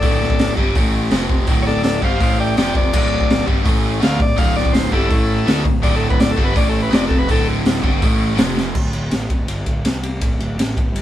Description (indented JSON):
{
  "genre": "garage rock duo or trio",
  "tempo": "165 BPM",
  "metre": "4/4",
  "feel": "straight",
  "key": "unclear",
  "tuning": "A4 = 440 Hz",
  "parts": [
    { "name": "overdriven combo organ", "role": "melody", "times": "0.0-7.5 s", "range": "E4 to G5", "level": "-22 LUFS", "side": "left 3 dB", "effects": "none" },
    { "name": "biting overdriven guitar", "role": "riff", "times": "0.0-8.8 s", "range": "D2 to D4", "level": "-21 LUFS", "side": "equal", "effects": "none" },
    { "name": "fuzz picked electric bass", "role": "bass", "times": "0.0-11.0 s", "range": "D1 to D2", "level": "-22 LUFS", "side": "equal", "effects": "overdrive" },
    { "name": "raw garage drum kit", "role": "drums", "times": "0.0-11.0 s", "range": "crash cymbal, hi-hat, kick drum, ride cymbal, snare drum", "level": "-17 LUFS", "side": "equal", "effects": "none" }
  ],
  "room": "light reverb",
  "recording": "band playing live in one room",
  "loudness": "-15 LUFS",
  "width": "side -12 dB against mid",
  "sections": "0.0-8.8 A section; 8.8-11.0 B section",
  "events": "transistor combo organ solo 0.0-8.8; drum fill 8.6",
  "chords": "0.0 D5; 0.8 A5; 1.1 F5; 1.5 D5; 2.2 A5; 2.6 F5; 2.9 D5; 3.7 A5; 4.0 D5; 5.1 A5; 5.5 D5; 6.6 A5; 6.9 F5; 7.3 D5; 8.0 A5; 8.4 F5; 8.8 D5; 9.9 N.C.; 10.2 D5"
}